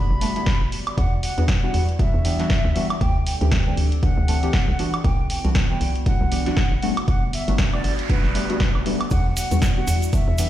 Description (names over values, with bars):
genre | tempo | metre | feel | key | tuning
deep house | 118 BPM | 4/4 | swing 58% on 16ths | E minor | A4 = 440 Hz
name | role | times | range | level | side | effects
mellow hollow silver concert flute | melody | 0.0-10.5 s | B4 to B5 | -30 LUFS | equal | vintage 12-bit sampler grit, dub echo
warbly tape-like pad | sustained chords | 0.0-10.5 s | G3 to D5 | -34 LUFS | left 1 dB | chorus, built-in reverb, sidechain pumping
deep mellow chord stab | stabs | 0.0-10.5 s | E3 to A4 | -27 LUFS | left 1 dB | chorus, phaser, sidechain pumping, dub echo
hollow knocking FM bass | bass | 0.0-10.5 s | G1 to E2 | -23 LUFS | equal | sidechain pumping
punchy analog drum machine | drums | 0.2-10.5 s | hi-hat, ride cymbal, snare drum, woodblock | -28 LUFS | equal | none
electronic kick drum | drums | 0.5-10.2 s | none | -22 LUFS | equal | none
noise sweep | sound effects | 7.2-9.1 s | none | -34 LUFS | right 4 dB | none
egg shaker | percussion | 9.1-10.5 s | none | -33 LUFS | right 4 dB | none
room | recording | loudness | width
little or no reverb | played on a big sound system in a bare room, stone room reverb | -18 LUFS | side -13 dB against mid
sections
0.0-10.5 A section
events
noise sweep 7.2-9.1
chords
0.0 Gmaj7; 1.0 Em9; 3.0 D7sus4; 4.8 Cmaj9#11; 6.8 Gmaj7; 9.1 Em9